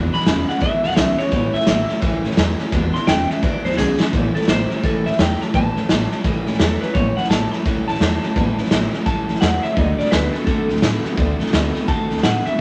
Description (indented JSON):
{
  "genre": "rockabilly",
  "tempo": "170 BPM",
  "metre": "4/4",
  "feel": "swing 63% on 8ths",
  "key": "A mixolydian",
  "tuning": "A4 = 440 Hz",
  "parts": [
    { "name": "picked steel-string acoustic guitar", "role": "accompaniment", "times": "0.0-12.6 s", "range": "E2 to F#4", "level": "-30 LUFS", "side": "equal", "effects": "none" },
    { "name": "electric guitar through a small old amp", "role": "riff", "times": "0.0-12.6 s", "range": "E2 to B3", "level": "-26 LUFS", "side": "equal", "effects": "none" },
    { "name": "upright bass", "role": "bass", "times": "0.0-12.5 s", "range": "E1 to A2", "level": "-26 LUFS", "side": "equal", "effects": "none" },
    { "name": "electric guitar through a small old amp", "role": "melody", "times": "0.1-12.6 s", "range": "G#4 to C6", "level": "-26 LUFS", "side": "equal", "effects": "harmonic tremolo" },
    { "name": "raw garage drum kit", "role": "drums", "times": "0.1-12.5 s", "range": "hi-hat, kick drum, snare drum", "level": "-22 LUFS", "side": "equal", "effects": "none" }
  ],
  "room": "light reverb",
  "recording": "none",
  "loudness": "-19 LUFS",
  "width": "mono",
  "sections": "0.0-4.1 A section; 4.1-12.6 B section",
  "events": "clean electric guitar solo 0.0-4.1; drum fill 3.8-4.1",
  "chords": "0.0 E7; 1.3 A7; 2.7 E7; 4.1 A7; 9.8 D7",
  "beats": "0.27 0.62 0.97 | 1.32 1.67 2.02 2.38 | 2.73 3.08 3.43 3.78 | 4.13 4.49 4.84 5.19 | 5.54 5.89 6.25 6.60 | 6.95 7.30 7.66 8.01 | 8.36 8.71 9.06 9.42 | 9.77 10.12 10.47 10.83 | 11.18 11.53 11.88 12.24 | 12.59"
}